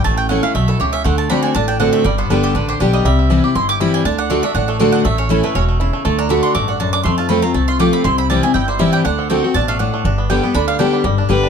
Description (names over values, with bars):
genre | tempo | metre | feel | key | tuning
bluegrass | 240 BPM | 4/4 | swing 54% on 8ths | G major | A4 = 440 Hz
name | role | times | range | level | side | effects
bluegrass banjo | melody | 0.0-11.5 s | G3 to G4 | -22 LUFS | right 3 dB | plate reverb
picked steel-string acoustic guitar | accompaniment | 0.0-11.5 s | F2 to G4 | -16 LUFS | left 2 dB | none
mandolin | stabs | 0.0-11.0 s | A4 to D6 | -22 LUFS | right 4 dB | none
upright bass | bass | 0.0-11.5 s | E1 to F2 | -19 LUFS | equal | none
rich fiddle | melody | 11.3-11.5 s | B4 | -18 LUFS | left 2 dB | none
room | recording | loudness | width
light reverb | close, detailed microphones | -13 LUFS | side -7 dB against mid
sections
0.0-11.0 A section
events
mandolin solo 0.0-11.0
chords
0.0 A; 1.1 D7; 2.1 G; 3.1 C; 4.1 D; 5.1 A; 6.1 D; 7.1 F; 8.1 C; 9.1 D7; 10.1 G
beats
| 0.05 0.30 0.55 0.80 | 1.05 1.30 1.55 1.80 | 2.05 2.30 2.55 2.80 | 3.05 3.30 3.55 3.80 | 4.05 4.30 4.55 4.80 | 5.05 5.30 5.55 5.80 | 6.05 6.30 6.55 6.80 | 7.05 7.30 7.55 7.80 | 8.05 8.30 8.55 8.80 | 9.05 9.30 9.55 9.80 | 10.05 10.30 10.55 10.80 | 11.05 11.30